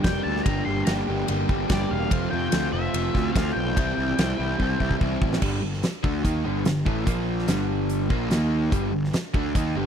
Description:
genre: classic rock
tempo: 145 BPM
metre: 4/4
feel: straight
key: G dorian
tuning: A4 = 440 Hz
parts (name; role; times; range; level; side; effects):
- octave-fuzz lead guitar; melody; 0.0-5.0 s; D5 to C6; -31 LUFS; left 3 dB; distortion, slapback echo
- overdriven electric guitar; riff; 0.0-9.9 s; F2 to G4; -26 LUFS; right 1 dB; none
- fuzz picked electric bass; bass; 0.0-9.9 s; E1 to F2; -28 LUFS; equal; overdrive
- huge arena drum kit; drums; 0.0-9.7 s; crash cymbal, hi-hat, kick drum, ride cymbal, snare drum; -27 LUFS; equal; none
room: little or no reverb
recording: dry, close 1970s-style studio recording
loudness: -22 LUFS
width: side -8 dB against mid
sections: 0.0-5.4 A section; 5.4-9.9 B section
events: drum fill 4.6-5.4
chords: 0.0 Gm; 2.1 Fadd9; 3.8 C; 5.4 Gm; 7.1 Bb5; 7.5 Gm; 8.3 Eb5; 8.7 Gm

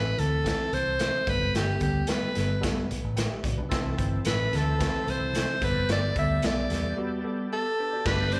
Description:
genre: uptempo 1960s-style soul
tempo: 110 BPM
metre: 4/4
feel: straight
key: unclear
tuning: A4 = 440 Hz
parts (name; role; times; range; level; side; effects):
- breathy alto saxophone; melody; 0.0-8.4 s; G4 to E5; -31 LUFS; equal; slapback echo, analog delay
- tine electric piano; accompaniment; 0.0-8.4 s; E3 to G5; -35 LUFS; equal; slapback echo
- vintage muted fingered electric bass; bass; 0.0-8.4 s; F#1 to E2; -32 LUFS; equal; none
- raw garage drum kit; drums; 0.2-8.4 s; crash cymbal, hi-hat, kick drum, snare drum; -33 LUFS; equal; none
- congas; percussion; 0.5-8.4 s; none; -46 LUFS; equal; none
- overdriven tonewheel organ; sustained chords; 3.7-8.4 s; B3 to A4; -42 LUFS; equal; chorus vibrato, slow rotary speaker
room: light reverb, studio ambience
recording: live gig heard through the venue's PA, club reverb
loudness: -27 LUFS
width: mono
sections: 0.0-8.1 A section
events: break 7.0-8.1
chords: 0.0 C6; 1.3 Gadd9; 3.7 C6; 5.6 Gadd9

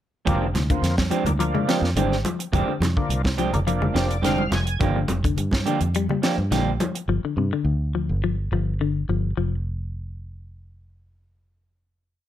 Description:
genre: afrobeat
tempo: 105 BPM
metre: 4/4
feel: straight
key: F dorian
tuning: A4 = 440 Hz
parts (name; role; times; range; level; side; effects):
- overdriven tonewheel organ; accompaniment; 0.3-4.8 s; F3 to Ab5; -28 LUFS; equal; slow rotary speaker, chorus vibrato
- semi-hollow electric guitar; arpeggios; 0.3-9.5 s; C3 to Ab3; -27 LUFS; left 8 dB; none
- clean electric guitar; stabs; 0.3-7.0 s; F3 to G4; -27 LUFS; right 6 dB; none
- fingered electric bass; bass; 0.3-12.3 s; F1 to G2; -24 LUFS; equal; none
- tight funk drum kit; drums; 0.3-7.1 s; hi-hat, kick drum, snare drum; -26 LUFS; right 1 dB; none
- congas; percussion; 0.3-7.0 s; none; -28 LUFS; right 2 dB; none
room: light reverb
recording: none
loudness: -20 LUFS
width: side -11 dB against mid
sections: 0.3-9.4 groove; 9.4-11.6 final note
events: tonewheel organ fill 3.7-4.8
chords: 0.3 Fm69; 4.8 Gm7; 9.4 N.C.

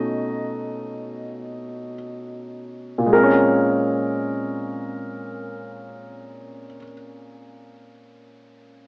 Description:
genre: solo jazz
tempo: free time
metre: none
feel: none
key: Bb minor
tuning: A4 = 439 Hz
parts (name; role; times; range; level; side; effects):
- warm grand piano; solo; 0.0-8.9 s; Bb2 to Eb5; -21 LUFS; equal; cassette tape
room: moderate spring reverb, RT60 1.7 s, small room ambience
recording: home recording on cassette, AM radio sound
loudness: -20 LUFS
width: side -36 dB against mid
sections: 0.0-3.1 A section; 3.1-7.7 B section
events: slowing down 0.0-3.1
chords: 0.0 B9; 3.1 Bbm9

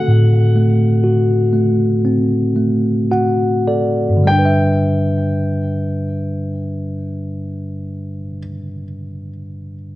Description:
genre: pop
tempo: 50-64 BPM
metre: 4/4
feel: straight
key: G major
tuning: A4 = 439 Hz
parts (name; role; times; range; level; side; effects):
- clear grand piano; melody; 0.0-8.4 s; F#5 to G5; -24 LUFS; left 1 dB; ping-pong delay
- tine electric piano; accompaniment; 0.0-10.0 s; G2 to F#5; -15 LUFS; equal; none
room: moderate concert hall reverb, RT60 1.9 s, studio reverb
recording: worn, warbling old tape, cassette tape, warbly pitch drift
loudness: -14 LUFS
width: side -16 dB against mid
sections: 0.0-4.3 A section; 4.3-9.0 B section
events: slowing down 0.0-4.3; tine electric piano fill 2.6-4.3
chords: 0.0 D7; 4.3 G6

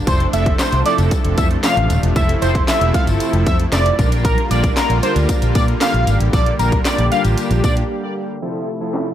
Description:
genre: dance-pop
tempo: 115 BPM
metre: 4/4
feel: straight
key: F major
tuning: A4 = 440 Hz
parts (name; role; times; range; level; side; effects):
- soft supersaw; sustained chords; 0.0-9.1 s; C3 to G4; -24 LUFS; equal; sidechain pumping
- octave-doubled lead; melody; 0.1-7.7 s; Bb4 to F5; -21 LUFS; equal; chorus, phaser, sidechain pumping, tape echo
- big bright polysynth; accompaniment; 0.1-9.1 s; F3 to Bb4; -24 LUFS; equal; chorus, sidechain pumping
- vintage muted fingered electric bass; bass; 0.1-7.8 s; Eb1 to Bb2; -18 LUFS; equal; sidechain pumping
- house drum kit; drums; 0.1-9.1 s; handclaps, hi-hat, kick drum, snare drum; -19 LUFS; equal; overdrive
- tambourine; percussion; 0.1-7.8 s; none; -34 LUFS; left 6 dB; none
room: little or no reverb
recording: low-pass filter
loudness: -14 LUFS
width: side -11 dB against mid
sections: 0.0-8.4 A section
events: drop 0.0-8.4; break 7.9-8.4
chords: 0.1 Fmaj7; 4.0 Bb6; 8.4 Fmaj7

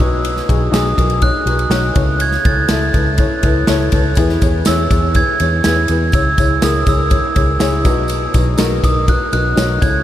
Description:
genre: piano-driven pop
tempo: 122 BPM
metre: 4/4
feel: straight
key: unclear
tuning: A4 = 436 Hz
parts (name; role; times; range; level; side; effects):
- felt-muted upright piano; accompaniment; 0.0-10.0 s; B2 to E5; -19 LUFS; left 3 dB; none
- vintage muted fingered electric bass; bass; 0.0-10.0 s; B1 to E2; -18 LUFS; equal; none
- natural country drum kit; drums; 0.0-9.9 s; kick drum, ride cymbal, snare drum; -16 LUFS; equal; none
- glockenspiel with rubber mallets; melody; 0.7-10.0 s; D#6 to A6; -19 LUFS; right 3 dB; diffuse ambient delay
- tambourine; percussion; 4.2-9.9 s; none; -35 LUFS; right 6 dB; none
room: moderate huge ambient reverb, RT60 8.0 s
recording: dreamy mix soaked in reverb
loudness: -12 LUFS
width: side -12 dB against mid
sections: 0.0-10.0 A section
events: none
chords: 0.0 B; 2.0 A/C#; 4.2 E; 6.1 C#m; 7.9 B

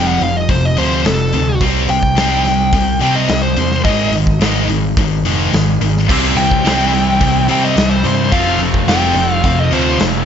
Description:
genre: hard rock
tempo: 107 BPM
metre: 4/4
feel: straight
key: unclear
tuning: A4 = 440 Hz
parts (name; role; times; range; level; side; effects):
- bluesy overdriven lead guitar; melody; 0.0-10.0 s; A4 to G5; -18 LUFS; left 1 dB; distortion, digital delay
- scooped high-gain guitar; riff; 0.0-10.2 s; F2 to C4; -18 LUFS; left 11 dB; distortion
- sludgy distorted guitar; riff; 0.0-10.2 s; F2 to C4; -19 LUFS; right 11 dB; overdrive
- overdriven picked electric bass; bass; 0.0-10.2 s; F1 to C3; -19 LUFS; equal; none
- big rock drum kit; drums; 0.2-10.1 s; crash cymbal, hi-hat, kick drum, snare drum; -19 LUFS; equal; none
- tight distorted guitar; riff; 6.1-10.2 s; C3 to F4; -19 LUFS; equal; distortion
room: little or no reverb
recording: nothing above 7.6 kHz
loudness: -11 LUFS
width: side -8 dB against mid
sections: 0.0-10.2 A section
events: lead electric guitar solo 0.0-10.2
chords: 0.0 F; 1.6 C; 3.9 Ab5; 6.1 C; 8.3 F

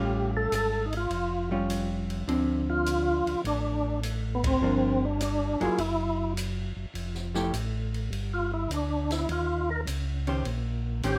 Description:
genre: soul jazz organ trio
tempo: 103 BPM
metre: 4/4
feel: swing 69% on 8ths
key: F major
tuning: A4 = 440 Hz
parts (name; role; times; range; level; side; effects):
- percussive tonewheel organ; melody; 0.0-11.2 s; B3 to Bb4; -31 LUFS; equal; slow rotary speaker, overdrive, chorus vibrato
- vintage hollow-body jazz guitar; accompaniment; 0.0-11.2 s; D3 to C5; -33 LUFS; equal; none
- tonewheel organ; bass; 0.0-11.2 s; E#1 to Eb2; -33 LUFS; equal; chorus vibrato, slow rotary speaker
- open jazz drum kit; drums; 0.5-11.2 s; hi-hat, kick drum, ride cymbal, snare drum; -41 LUFS; equal; none
room: moderate studio reverb, RT60 0.8 s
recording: none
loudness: -29 LUFS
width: mono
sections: 0.0-7.0 A section; 7.0-11.2 B section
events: band accent 4.3; tonewheel organ solo 7.0-11.2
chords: 0.0 Aaug7; 2.3 Dm7; 4.6 Gm7; 5.8 Esus2/F#; 7.0 Fmaj9; 9.3 Eb6

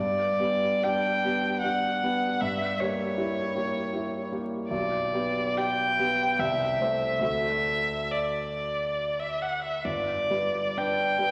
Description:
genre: classical, romantic duo for violin and grand piano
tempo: 63-80 BPM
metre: 3/4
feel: rubato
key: G major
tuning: A4 = 440 Hz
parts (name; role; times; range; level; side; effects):
- rich violin; melody; 0.0-11.3 s; Db5 to G5; -29 LUFS; equal; none
- clear concert grand piano; accompaniment; 0.0-11.3 s; G1 to C5; -32 LUFS; equal; none
room: wet concert hall reverb, RT60 2.2 s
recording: vinyl crackle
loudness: -27 LUFS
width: mono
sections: 0.0-11.3 A section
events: none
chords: 0.0 G; 2.4 Gdim7; 4.7 G/B; 6.4 Am/C; 7.2 D; 9.8 G

